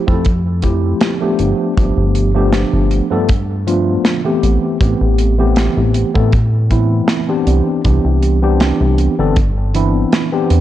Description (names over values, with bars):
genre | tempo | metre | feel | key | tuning
vaporwave | 79 BPM | 4/4 | straight | unclear | A4 = 440 Hz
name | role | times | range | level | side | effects
tine electric piano | accompaniment | 0.0-10.6 s | E3 to A4 | -16 LUFS | left 1 dB | medium stereo tremolo, analog chorus, tape echo
chorused synth bass | bass | 0.1-10.6 s | G1 to A2 | -14 LUFS | equal | none
kick drum | drums | 0.1-9.5 s | none | -15 LUFS | equal | vintage 12-bit sampler grit
modern studio drum kit | drums | 0.2-10.6 s | hi-hat, snare drum | -20 LUFS | right 1 dB | vintage 12-bit sampler grit
room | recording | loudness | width
light reverb, small room reverb | dark, warm production, cassette tape | -12 LUFS | side -13 dB against mid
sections
0.0-10.6 A section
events
none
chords
0.0 Fmaj9; 1.4 G7; 4.4 Am7; 7.5 Cmaj9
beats
0.25 1.01 | 1.77 2.53 3.29 4.05 | 4.81 5.57 6.33 7.09 | 7.85 8.61 9.37 10.13